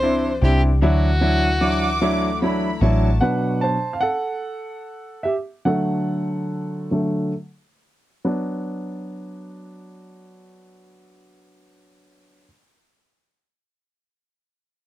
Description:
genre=six-eight pop ballad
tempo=44-50 BPM (dotted quarters)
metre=6/8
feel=straight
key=B phrygian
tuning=A4 = 440 Hz
part: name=warm violin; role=melody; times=0.0-2.4 s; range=F#4 to C5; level=-24 LUFS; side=left 1 dB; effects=none
part: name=clear baby grand piano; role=accompaniment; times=0.0-12.4 s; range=B2 to A5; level=-22 LUFS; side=right 1 dB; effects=none
part: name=direct-recorded clean electric guitar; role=arpeggios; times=0.0-3.8 s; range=E3 to G4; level=-31 LUFS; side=left 9 dB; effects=wide subtle chorus
part: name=vintage muted fingered electric bass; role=bass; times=0.0-3.2 s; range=A1 to D2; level=-20 LUFS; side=equal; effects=none
part: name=warm studio violin section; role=second line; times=1.6-3.2 s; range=A5 to D6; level=-26 LUFS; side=right 2 dB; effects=none
room=light reverb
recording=dry, close 1970s-style studio recording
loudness=-19 LUFS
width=side -14 dB against mid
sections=0.0-3.2 A section; 3.2-8.2 B section; 8.2-11.0 C section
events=slowing down 3.2-8.2; grand piano solo 3.2-8.2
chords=0.0 Cadd9; 0.8 Dadd9; 3.2 Bm; 5.7 D; 8.2 Bm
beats=| 0.82 2.02 | 3.22 4.42 | 5.65 6.92 | 8.25 9.62

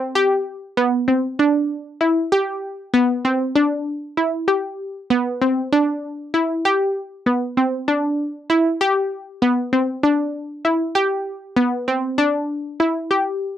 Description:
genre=progressive instrumental, progressive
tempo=194 BPM (eighths)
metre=7/8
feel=straight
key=unclear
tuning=A4 = 439 Hz
part: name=analog pluck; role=solo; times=0.0-13.5 s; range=B3 to G4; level=-18 LUFS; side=equal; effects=chorus
room=light reverb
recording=dry, close 1970s-style studio recording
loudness=-18 LUFS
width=side -10 dB against mid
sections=0.2-13.6 A section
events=none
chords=none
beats=| 0.15 0.46 0.77 1.08 1.39 1.70 2.01 | 2.32 2.63 2.94 3.25 3.56 3.87 4.18 | 4.49 4.79 5.10 5.41 5.72 6.03 6.34 | 6.65 6.96 7.26 7.57 7.88 8.19 8.49 | 8.80 9.11 9.42 9.73 10.03 10.34 10.65 | 10.96 11.26 11.57 11.88 12.19 12.49 12.80 | 13.11 13.41

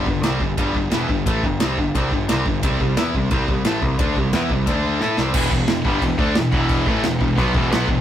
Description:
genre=heavy metal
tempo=176 BPM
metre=4/4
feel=straight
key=unclear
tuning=A4 = 440 Hz
part: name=scooped high-gain guitar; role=riff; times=0.0-8.0 s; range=E2 to A4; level=-23 LUFS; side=right 3 dB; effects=distortion
part: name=tight distorted guitar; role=riff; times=0.0-8.0 s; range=E2 to A4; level=-25 LUFS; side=left 5 dB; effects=distortion
part: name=overdriven picked electric bass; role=bass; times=0.0-8.0 s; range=E1 to A2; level=-23 LUFS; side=equal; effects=none
part: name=modern studio drum kit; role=drums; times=0.1-8.0 s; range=crash cymbal, kick drum, ride cymbal, snare drum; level=-22 LUFS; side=equal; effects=none
part: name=heavy high-gain guitar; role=riff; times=5.3-8.0 s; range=E2 to D4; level=-25 LUFS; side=equal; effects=distortion
room=light reverb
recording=rough rehearsal-room recording, warm saturation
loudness=-17 LUFS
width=side -10 dB against mid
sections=0.0-5.4 A section; 5.4-8.0 B section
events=drum fill 5.0-5.4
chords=0.0 G5; 2.6 C5; 4.7 D5; 5.0 C5; 5.4 Em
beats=0.24 0.58 0.93 | 1.27 1.61 1.95 2.29 | 2.63 2.97 3.31 3.65 | 3.99 4.33 4.67 5.01 | 5.35 5.69 6.03 6.37 | 6.70 7.04 7.38 7.71

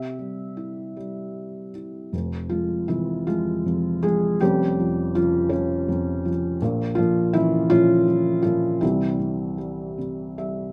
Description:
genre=classical, lyrical solo piano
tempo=54 BPM (dotted quarters)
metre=6/8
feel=uneven beats, rubato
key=F harmonic minor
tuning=A4 = 435 Hz
part: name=felt-muted upright piano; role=solo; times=0.0-10.7 s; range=F1 to E5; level=-23 LUFS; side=equal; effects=none
room=light reverb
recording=none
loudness=-23 LUFS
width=mono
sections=0.0-2.1 A section; 2.1-10.7 A section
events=felt piano fill 10.0-10.7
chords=0.0 C; 2.1 Fm; 4.4 Db/F; 6.6 Bbm; 8.8 C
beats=0.96 | 2.13 3.27 | 4.41 5.51 | 6.61 7.71 | 8.82 9.98

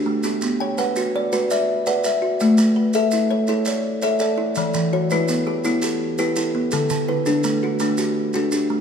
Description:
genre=southern african traditional, mbira-style interlocking cycle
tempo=111 BPM (dotted quarters)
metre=12/8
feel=straight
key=A mixolydian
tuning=A4 = 440 Hz
part: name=kalimba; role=arpeggios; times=0.0-8.8 s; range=D3 to G5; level=-20 LUFS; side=left 2 dB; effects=none
part: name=kalimba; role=arpeggios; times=0.0-8.8 s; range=D3 to E5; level=-23 LUFS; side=right 3 dB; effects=none
part: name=maracas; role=percussion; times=0.2-8.7 s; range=none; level=-31 LUFS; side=right 3 dB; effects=none
room=wet recital hall reverb, RT60 1.8 s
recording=dark, warm production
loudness=-18 LUFS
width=side -7 dB against mid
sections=0.0-8.8 A section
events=none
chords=0.2 Bm; 2.4 A; 4.6 Em; 6.7 D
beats=| 0.23 0.78 1.32 1.86 | 2.40 2.94 3.48 4.02 | 4.57 5.11 5.65 6.19 | 6.73 7.27 7.81 8.35

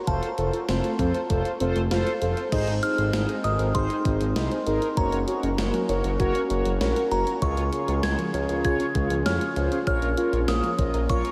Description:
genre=synth-pop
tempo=98 BPM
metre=4/4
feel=straight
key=unclear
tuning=A4 = 441 Hz
part: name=soft round pluck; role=arpeggios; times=0.0-11.3 s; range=F3 to F5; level=-33 LUFS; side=equal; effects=chorus, tape echo
part: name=glassy synth bell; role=melody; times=0.1-11.3 s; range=A5 to Ab6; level=-34 LUFS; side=equal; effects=chorus, tape echo
part: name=mellow synth brass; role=accompaniment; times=0.1-11.3 s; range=Eb4 to Eb5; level=-31 LUFS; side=equal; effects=chorus
part: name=smooth synth bass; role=bass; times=0.1-11.2 s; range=F1 to F2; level=-29 LUFS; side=equal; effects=none
part: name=gated 80s digital drum machine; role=drums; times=0.1-11.3 s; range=crash cymbal, hi-hat, kick drum, snare drum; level=-33 LUFS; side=equal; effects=gated reverb, gated reverb snare
part: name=warm analog pad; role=sustained chords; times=2.5-11.3 s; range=Db3 to Ab4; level=-34 LUFS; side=equal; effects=chorus
room=wet huge ambient reverb, RT60 7.9 s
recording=dreamy mix soaked in reverb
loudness=-25 LUFS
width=mono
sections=0.0-2.5 A section; 2.5-11.3 B section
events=none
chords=0.1 F; 2.5 Ab; 5.0 Gb; 7.4 Db; 9.9 Bbm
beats=| 0.07 0.69 1.30 1.91 | 2.52 3.13 3.75 4.36 | 4.97 5.58 6.20 6.81 | 7.42 8.03 8.65 9.26 | 9.87 10.48 11.10

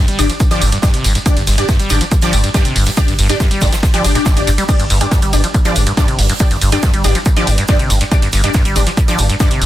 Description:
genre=driving peak-time techno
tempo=140 BPM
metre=4/4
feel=straight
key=unclear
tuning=A4 = 440 Hz
part: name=acid bass, saw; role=riff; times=0.0-9.7 s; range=G1 to G3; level=-19 LUFS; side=equal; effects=lush chorus, sidechain pumping, dub echo
part: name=warm sub bass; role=bass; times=0.1-9.7 s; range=G1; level=-17 LUFS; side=equal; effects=overdrive, sidechain pumping, low-pass filter
part: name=punchy analog drum machine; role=drums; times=0.1-9.7 s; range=crash cymbal, hi-hat, ride cymbal, tambourine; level=-20 LUFS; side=right 1 dB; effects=sidechain pumping on hats, sidechain pumping on cymbals, sidechain pumping on perc
part: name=rave stab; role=stabs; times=0.2-9.5 s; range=D4 to D5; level=-20 LUFS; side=left 2 dB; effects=chorus, built-in reverb, phaser, sidechain pumping, dub echo
part: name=natural country drum kit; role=drums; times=0.2-9.7 s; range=hi-hat, shaker, snare drum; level=-27 LUFS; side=right 3 dB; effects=sidechain pumping on hats, high-pass filter on hats, high-pass filter on snare, sidechain pumping on perc, high-pass filter on perc, high-pass filter on room
part: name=electronic kick drum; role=drums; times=0.4-9.5 s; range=none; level=-15 LUFS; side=equal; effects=none
room=small room ambience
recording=dense, heavily limited modern master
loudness=-11 LUFS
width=side -14 dB against mid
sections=0.0-9.7 A section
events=none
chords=0.0 G5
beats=0.40 0.83 | 1.26 1.69 2.12 2.54 | 2.97 3.40 3.83 4.26 | 4.69 5.12 5.54 5.97 | 6.40 6.83 7.26 7.69 | 8.12 8.54 8.97 9.40

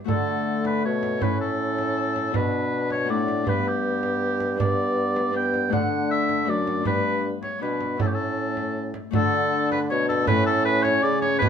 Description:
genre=classical, renaissance-style consort dance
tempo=159 BPM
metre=3/4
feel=straight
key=unclear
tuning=A4 = 440 Hz
part: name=Celtic harp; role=accompaniment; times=0.0-11.5 s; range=F#2 to A4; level=-30 LUFS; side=left 7 dB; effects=none
part: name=warm oboe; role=melody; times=0.1-11.5 s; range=G4 to G5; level=-25 LUFS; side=left 1 dB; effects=none
part: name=warm trombone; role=accompaniment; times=0.1-11.5 s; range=A3 to D4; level=-29 LUFS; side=equal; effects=none
part: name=dark bassoon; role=bass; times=0.1-11.5 s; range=F#2 to D3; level=-27 LUFS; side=right 2 dB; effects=none
part: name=frame drum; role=percussion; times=0.1-11.5 s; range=none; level=-29 LUFS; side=right 4 dB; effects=none
room=moderate stone room reverb, RT60 1.0 s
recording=none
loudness=-21 LUFS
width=side -8 dB against mid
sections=0.1-9.1 A section; 9.1-11.5 A section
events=none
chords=0.1 D; 1.2 A; 2.3 Bm; 3.5 G; 5.7 D; 6.9 G; 8.0 A; 9.1 D; 10.3 A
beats=| 0.09 0.47 0.84 | 1.22 1.59 1.97 | 2.35 2.72 3.10 | 3.47 3.85 4.22 | 4.60 4.98 5.35 | 5.73 6.11 6.48 | 6.86 7.24 7.62 | 8.00 8.38 8.76 | 9.14 9.52 9.90 | 10.28 10.65 11.03 | 11.41

